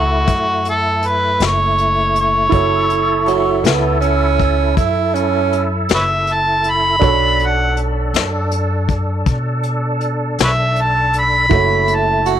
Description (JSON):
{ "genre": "slow blues", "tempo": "53 BPM (dotted quarters)", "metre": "12/8", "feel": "straight", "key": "F# minor", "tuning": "A4 = 440 Hz", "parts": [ { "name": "warm harmonica", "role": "melody", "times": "0.0-12.3 s", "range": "F#4 to B5", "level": "-15 LUFS", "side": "equal", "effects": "overdrive" }, { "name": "warm grand piano", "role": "accompaniment", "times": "0.0-12.4 s", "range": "D4 to G#5", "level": "-22 LUFS", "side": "right 11 dB", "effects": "none" }, { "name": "bright tonewheel organ", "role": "sustained chords", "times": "0.0-12.4 s", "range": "A3 to A4", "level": "-22 LUFS", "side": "equal", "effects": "slow rotary speaker, chorus vibrato" }, { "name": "upright bass", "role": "bass", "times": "0.0-12.4 s", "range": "F#1 to B2", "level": "-20 LUFS", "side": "left 1 dB", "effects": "none" }, { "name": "vintage brush drum kit", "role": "drums", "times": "0.3-12.4 s", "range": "hi-hat, kick drum, snare drum", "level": "-19 LUFS", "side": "left 4 dB", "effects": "none" }, { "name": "growling tenor saxophone", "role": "second line", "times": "3.3-12.4 s", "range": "F#3 to F#4", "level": "-17 LUFS", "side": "right 11 dB", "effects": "none" } ], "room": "small room ambience", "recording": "1960s-style stereo", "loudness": "-13 LUFS", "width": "side -10 dB against mid", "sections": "0.0-12.4 A section", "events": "none", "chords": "0.0 F#m7; 7.0 Bm7; 11.5 F#m7" }